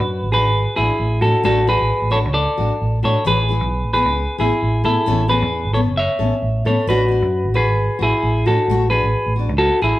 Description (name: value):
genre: highlife guitar band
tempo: 133 BPM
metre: 4/4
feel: straight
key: unclear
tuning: A4 = 443 Hz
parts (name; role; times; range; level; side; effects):
- semi-hollow electric guitar; melody; 0.0-10.0 s; E4 to E5; -18 LUFS; equal; spring reverb
- picked steel-string acoustic guitar; accompaniment; 0.0-10.0 s; E3 to A4; -26 LUFS; left 5 dB; none
- fingered electric bass; bass; 0.0-9.9 s; F#1 to A2; -19 LUFS; right 1 dB; none
room: moderate large studio reverb, RT60 1.0 s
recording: band playing live in one room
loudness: -15 LUFS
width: side -16 dB against mid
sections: 0.0-10.0 A section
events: none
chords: 0.0 Bm; 1.5 D/A; 3.3 E/A; 5.1 Aadd9; 6.9 Bm; 8.7 D/A